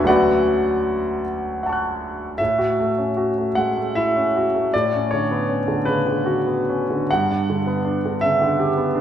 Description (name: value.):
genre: classical, impressionist solo piano.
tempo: 51 BPM (dotted quarters).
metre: 6/8.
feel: uneven beats, rubato.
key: A major.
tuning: A4 = 445 Hz.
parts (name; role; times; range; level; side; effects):
clear concert grand piano; solo; 0.0-9.0 s; D2 to F#6; -18 LUFS; equal; none.
room: wet recital hall reverb, RT60 1.7 s.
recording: recorded in a church or concert hall.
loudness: -18 LUFS.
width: side -10 dB against mid.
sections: 0.0-2.4 A section; 2.4-9.0 B section.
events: none.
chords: 0.1 Dmaj7; 2.4 A6; 4.7 Bm9/A; 7.1 Gmaj7.